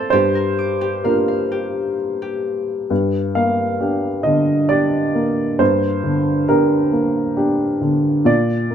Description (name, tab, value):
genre	neoclassical piano and strings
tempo	66 BPM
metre	3/4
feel	uneven beats, rubato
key	G minor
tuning	A4 = 440 Hz
part	warm upright piano	accompaniment	0.0-8.7 s	G2 to F5	-16 LUFS	right 1 dB	none
part	Celtic harp	arpeggios	0.0-6.1 s	C4 to D6	-24 LUFS	left 5 dB	slapback echo
room	little or no reverb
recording	close, detailed microphones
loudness	-16 LUFS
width	side -8 dB against mid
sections	0.0-2.9 A section; 2.9-8.7 B section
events	none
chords	0.1 Gm7; 2.9 Gm